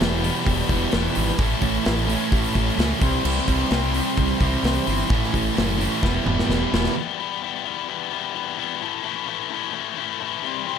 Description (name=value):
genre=quiet-loud alternative rock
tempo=130 BPM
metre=4/4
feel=straight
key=E minor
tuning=A4 = 442 Hz
part: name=tonewheel organ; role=sustained chords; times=0.0-7.0 s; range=E4 to A5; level=-35 LUFS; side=equal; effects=none
part: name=fuzz guitar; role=riff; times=0.0-7.0 s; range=A2 to E4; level=-27 LUFS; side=equal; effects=distortion
part: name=overdriven electric guitar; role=riff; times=0.0-10.8 s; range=A2 to E4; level=-26 LUFS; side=left 13 dB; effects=none
part: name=sludgy distorted guitar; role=riff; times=0.0-6.9 s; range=E2 to C4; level=-27 LUFS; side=right 13 dB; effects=overdrive
part: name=growling fingered electric bass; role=bass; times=0.0-6.9 s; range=E1 to C#2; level=-25 LUFS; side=equal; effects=overdrive
part: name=big rock drum kit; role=drums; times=0.0-6.9 s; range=crash cymbal, hi-hat, kick drum, snare drum, toms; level=-24 LUFS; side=equal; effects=none
room=small room ambience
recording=none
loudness=-20 LUFS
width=side -7 dB against mid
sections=0.0-7.0 A section; 7.0-10.8 A section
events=drum fill 6.0-7.0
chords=0.0 Em; 1.4 A; 3.0 C; 5.1 A; 6.0 Em; 8.8 A